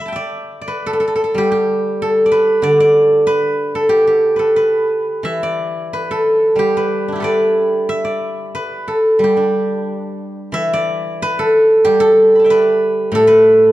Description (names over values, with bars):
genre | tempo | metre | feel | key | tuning
chinese traditional, Chinese solo plucked strings | 86-96 BPM | 2/4 | rubato | G gong mode | A4 = 440 Hz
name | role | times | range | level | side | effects
steel-string zither | solo | 0.0-13.7 s | A2 to B5 | -12 LUFS | equal | none
room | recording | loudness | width
light reverb | dark, warm production | -12 LUFS | side -15 dB against mid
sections
0.0-10.5 A section; 10.5-13.7 B section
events
none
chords
none